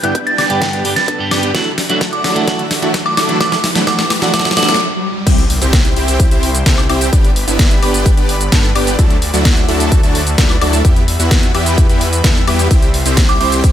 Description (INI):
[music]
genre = EDM, festival progressive house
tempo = 129 BPM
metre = 4/4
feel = straight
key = G major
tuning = A4 = 441 Hz
[part]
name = glassy synth bell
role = melody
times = 0.0-4.8, 13.3-13.5 s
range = D6 to A6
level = -19 LUFS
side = right 2 dB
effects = chorus, phaser, vintage 12-bit sampler grit, tape echo
[part]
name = clean electric guitar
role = accompaniment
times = 0.0-4.7 s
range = G2 to G4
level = -20 LUFS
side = right 3 dB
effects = phaser, sidechain pumping, tape echo
[part]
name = supersaw pad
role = sustained chords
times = 0.0-13.7 s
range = D3 to C6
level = -24 LUFS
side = equal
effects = sidechain pumping
[part]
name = big supersaw lead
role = riff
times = 0.0-13.7 s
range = F#3 to B4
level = -18 LUFS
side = equal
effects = sidechain pumping, low-pass filter, tape echo
[part]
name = pop drum kit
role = drums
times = 0.0-13.7 s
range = crash cymbal, hi-hat, ride cymbal, shaker, snare drum, woodblock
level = -17 LUFS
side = left 1 dB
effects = overdrive
[part]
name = riser and impact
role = sound effects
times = 1.6-7.1 s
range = none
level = -25 LUFS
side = left 1 dB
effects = none
[part]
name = electronic kick drum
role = drums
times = 0.1-13.7 s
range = none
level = -12 LUFS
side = equal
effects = high-pass filter on kick, high-pass filter on room
[part]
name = wide detuned saw bass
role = bass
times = 5.3-13.7 s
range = G1 to G2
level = -18 LUFS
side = equal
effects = chorus, sidechain pumping
[sound]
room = light reverb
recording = none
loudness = -11 LUFS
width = side -11 dB against mid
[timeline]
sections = 0.0-5.3 A section; 5.3-13.7 B section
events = build-up 0.0-5.3; drum fill 0.0-4.8; stop 4.8-5.3; drop 5.3-13.7; impact 5.3-7.1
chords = 0.0 G; 1.5 Dadd9; 3.4 Em; 5.3 C; 7.1 G; 9.0 Dadd9; 10.8 Em; 12.7 C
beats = 0.15 0.62 1.08 | 1.55 2.01 2.48 2.94 | 3.41 3.87 4.34 4.80 | 5.27 5.73 6.20 6.66 | 7.13 7.59 8.06 8.52 | 8.99 9.45 9.92 10.38 | 10.85 11.31 11.78 12.24 | 12.71 13.17 13.64